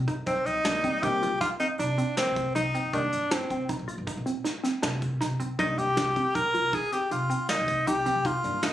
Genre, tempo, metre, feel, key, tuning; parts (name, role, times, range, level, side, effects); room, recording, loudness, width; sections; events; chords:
progressive instrumental, band music in an uneven meter; 158 BPM; 7/4; straight; C minor; A4 = 440 Hz
hollow square pluck; arpeggios; 0.0-8.7 s; Eb3 to D5; -32 LUFS; right 1 dB; chorus, phaser
upright bass; bass; 0.0-8.7 s; Bb1 to C3; -33 LUFS; equal
soft brush drum kit; drums; 0.1-8.7 s; hi-hat, kick drum, snare drum; -34 LUFS; equal
clear tenor saxophone; melody; 0.3-8.7 s; C4 to Bb4; -26 LUFS; equal
bell-like tine electric piano; accompaniment; 0.7-8.6 s; Eb3 to D5; -33 LUFS; left 1 dB
little or no reverb; recorded on a phone in the room, club reverb; -25 LUFS; side -12 dB against mid
0.3-8.7 A section
0.3 Cm7